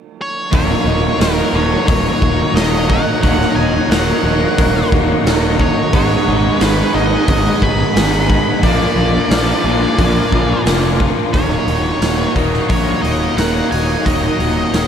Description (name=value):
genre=rock, shoegaze and dream pop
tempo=89 BPM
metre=4/4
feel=straight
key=Eb minor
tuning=A4 = 441 Hz
part: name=octave-fuzz lead guitar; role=melody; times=0.2-14.9 s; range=Bb4 to Cb6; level=-21 LUFS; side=equal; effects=distortion, diffuse ambient delay
part: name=sweeping resonant pad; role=sustained chords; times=0.5-14.9 s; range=D4 to Bb5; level=-24 LUFS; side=equal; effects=chorus
part: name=fingerpicked twelve-string acoustic guitar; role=arpeggios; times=0.5-14.9 s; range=Eb2 to F4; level=-25 LUFS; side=right 3 dB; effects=ensemble chorus, diffuse ambient delay
part: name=electric guitar through a small old amp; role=riff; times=0.5-14.9 s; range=Eb2 to F4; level=-22 LUFS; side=right 7 dB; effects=reverse reverb
part: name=overdriven electric guitar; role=riff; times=0.5-14.9 s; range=Eb2 to F4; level=-21 LUFS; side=left 8 dB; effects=lush chorus
part: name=raw garage guitar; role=riff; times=0.5-14.9 s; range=Eb2 to Bb3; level=-23 LUFS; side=equal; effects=overdrive, wide subtle chorus
part: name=fuzz picked electric bass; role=bass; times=0.5-14.9 s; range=Eb1 to Bb1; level=-19 LUFS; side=equal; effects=overdrive
part: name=raw garage drum kit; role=drums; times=0.5-14.9 s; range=hi-hat, kick drum, snare drum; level=-18 LUFS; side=equal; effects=none
room=moderate huge ambient reverb, RT60 8.0 s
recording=dreamy mix soaked in reverb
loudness=-12 LUFS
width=side -8 dB against mid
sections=0.5-11.3 A section; 11.3-14.9 B section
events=none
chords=0.0 N.C.; 0.5 Ebm7; 5.9 Abm7; 8.6 Bb7; 11.3 Ebm7